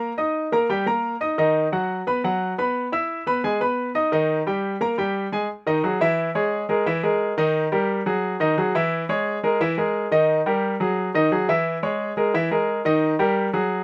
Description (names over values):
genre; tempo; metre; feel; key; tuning
latin; 175 BPM; 4/4; straight; unclear; A4 = 440 Hz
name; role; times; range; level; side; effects
clear baby grand piano; solo; 0.0-13.8 s; D#3 to E6; -22 LUFS; equal; none
room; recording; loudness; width
light reverb; none; -22 LUFS; mono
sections
0.0-5.5 A section; 5.5-13.8 B section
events
none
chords
0.0 D#; 1.4 B; 2.7 E; 4.1 D#; 5.5 G#5; 6.2 C#m; 6.9 Emaj7#11; 7.5 D#; 8.2 G#5; 8.9 C#m; 9.6 Emaj7#11; 10.3 D#; 11.0 G#5; 11.7 C#m; 12.3 Emaj7#11; 13.0 D#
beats
| 0.00 0.35 0.69 1.03 | 1.38 1.72 2.06 2.41 | 2.75 3.09 3.43 3.78 | 4.12 4.46 4.80 5.15 | 5.49 5.83 6.18 6.52 | 6.86 7.20 7.55 7.89 | 8.23 8.57 8.91 9.26 | 9.60 9.94 10.28 10.63 | 10.97 11.31 11.65 12.00 | 12.34 12.68 13.02 13.37 | 13.71